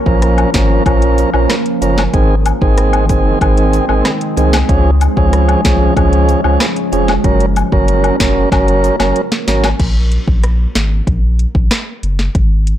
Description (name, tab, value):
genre	dancehall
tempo	94 BPM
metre	4/4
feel	straight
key	unclear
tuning	A4 = 441 Hz
part	deep dark ambient pad	sustained chords	0.0-9.8 s	Eb3 to Bb4	-20 LUFS	equal	chorus, built-in reverb, sidechain pumping
part	tonewheel organ	accompaniment	0.1-9.7 s	Eb3 to Bb4	-15 LUFS	right 3 dB	overdrive, stopped rotary speaker
part	saturated sub bass	bass	0.1-12.7 s	F1 to Db2	-14 LUFS	equal	none
part	afro-pop drum kit	drums	0.1-12.8 s	crash cymbal, hi-hat, kick drum, rim click, snare drum	-15 LUFS	equal	soft clipping on snare
part	woodblock and cabasa	percussion	0.4-9.8 s	none	-21 LUFS	left 8 dB	none
room	digital ambience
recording	blown-out, overdriven recording, overdrive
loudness	-10 LUFS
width	side -11 dB against mid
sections	0.0-9.8 A section; 9.8-12.8 B section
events	drum fill 8.5-9.8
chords	0.0 Bbm; 2.1 Ab; 4.7 Db; 7.2 Gb; 9.8 N.C.